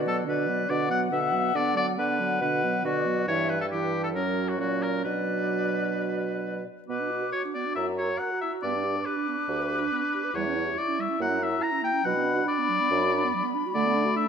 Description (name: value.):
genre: quick classical-period movement for wind quintet.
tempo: 140 BPM.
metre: 4/4.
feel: rubato.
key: B minor.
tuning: A4 = 440 Hz.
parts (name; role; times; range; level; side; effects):
silver concert flute; melody; 0.0-14.3 s; B4 to D6; -33 LUFS; left 7 dB; none.
clear clarinet; accompaniment; 0.0-14.3 s; F#3 to C#5; -33 LUFS; right 13 dB; none.
mellow French horn; accompaniment; 0.0-14.3 s; D3 to F#4; -33 LUFS; right 2 dB; none.
warm bassoon; bass; 0.0-14.1 s; D2 to D3; -31 LUFS; right 2 dB; none.
clear oboe; second line; 0.1-14.3 s; F#4 to A#5; -28 LUFS; left 3 dB; none.
room: moderate scoring stage reverb, RT60 1.8 s.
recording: none.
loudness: -24 LUFS.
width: side -7 dB against mid.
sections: 0.0-6.9 A section; 6.9-14.3 B section.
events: none.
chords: 0.0 Bm; 1.6 Bm/D; 2.4 Bm; 3.3 Em/G; 4.1 F#; 5.0 Bm; 7.8 F#7; 8.6 G; 10.3 C#dim/E; 11.2 F#7; 12.0 Bm; 13.7 Bm7/D.